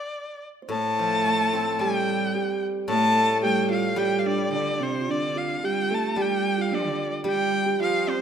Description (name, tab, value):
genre	chinese traditional, Chinese chamber ensemble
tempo	110 BPM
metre	2/4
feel	straight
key	unclear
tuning	A4 = 443 Hz
part	clear erhu	melody	0.0-8.2 s	C5 to A5	-25 LUFS	left 2 dB	none
part	kalimba	second line	0.6-8.2 s	C4 to C5	-28 LUFS	right 2 dB	none
part	clear cello	second line	0.7-8.2 s	C3 to A3	-29 LUFS	right 5 dB	none
part	steel-string zither	accompaniment	0.7-8.2 s	A2 to C4	-30 LUFS	left 4 dB	none
room	wet recital hall reverb, RT60 1.7 s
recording	minimal, uncompressed stereo recording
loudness	-22 LUFS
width	side -8 dB against mid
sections	0.7-8.2 A section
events	none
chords	none